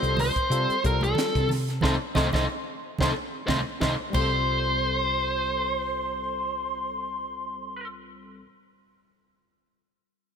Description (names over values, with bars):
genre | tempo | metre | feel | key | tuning
electric jazz fusion | 91 BPM | 4/4 | swing 54% on 16ths | C dorian | A4 = 440 Hz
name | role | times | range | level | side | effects
dark smooth lead guitar | melody | 0.0-7.9 s | A4 to Eb5 | -27 LUFS | left 1 dB | overdrive
reedy silver concert flute | second line | 0.0-7.9 s | A5 to C6 | -34 LUFS | right 6 dB | none
barky tine electric piano | accompaniment | 0.0-8.5 s | G3 to A4 | -34 LUFS | left 4 dB | analog chorus
woody fretless electric bass | bass | 0.0-8.4 s | C2 to C3 | -29 LUFS | equal | none
crisp fusion drum kit | drums | 0.0-4.3 s | crash cymbal, hi-hat, kick drum, snare drum | -30 LUFS | equal | gated reverb
congas | percussion | 0.2-4.8 s | none | -33 LUFS | right 4 dB | none
room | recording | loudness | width
light reverb, studio reverb | bright 1980s-style digital production | -24 LUFS | side -7 dB against mid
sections
0.0-4.5 A section; 4.5-7.1 B section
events
band accent 1.8-4.5; drum fill 4.1-4.5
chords
0.0 Cm6; 4.1 C5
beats
0.51 1.17 | 1.83 2.49 3.15 3.81 | 4.47 5.13 5.79 6.45